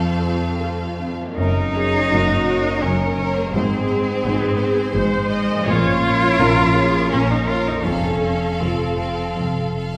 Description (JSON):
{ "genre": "cinematic, emotional film score for orchestra", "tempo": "84 BPM", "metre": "3/4", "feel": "uneven beats, rubato", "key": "unclear", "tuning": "A4 = 436 Hz", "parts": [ { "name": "clear studio violin section", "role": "second line", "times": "0.0-10.0 s", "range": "A4 to F5", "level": "-30 LUFS", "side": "equal", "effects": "none" }, { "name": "clear symphonic viola section", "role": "accompaniment", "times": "0.0-9.8 s", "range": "C4 to Eb5", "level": "-28 LUFS", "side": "equal", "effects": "none" }, { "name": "felt-muted upright piano", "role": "accompaniment", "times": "0.0-10.0 s", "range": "F2 to C5", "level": "-27 LUFS", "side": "equal", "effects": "none" }, { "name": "concert harp", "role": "arpeggios", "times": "0.0-10.0 s", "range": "F2 to C5", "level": "-31 LUFS", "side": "equal", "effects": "none" }, { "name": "rich studio cello section", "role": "bass", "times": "0.0-10.0 s", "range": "F2 to Bb2", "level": "-28 LUFS", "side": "equal", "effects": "none" }, { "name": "clear cello", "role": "melody", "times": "1.4-9.7 s", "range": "Ab3 to F4", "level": "-24 LUFS", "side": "equal", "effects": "none" }, { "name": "rich symphonic double bass section", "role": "bass", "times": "1.4-10.0 s", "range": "F1 to Bb1", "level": "-29 LUFS", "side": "equal", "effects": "none" } ], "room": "wet concert hall reverb, RT60 1.7 s", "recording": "recorded in a church or concert hall", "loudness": "-19 LUFS", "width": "mono", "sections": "0.0-1.4 A section; 1.4-10.0 B section", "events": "none", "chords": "0.0 F; 1.4 Gb; 3.5 Ab; 5.7 Bbm; 7.8 F" }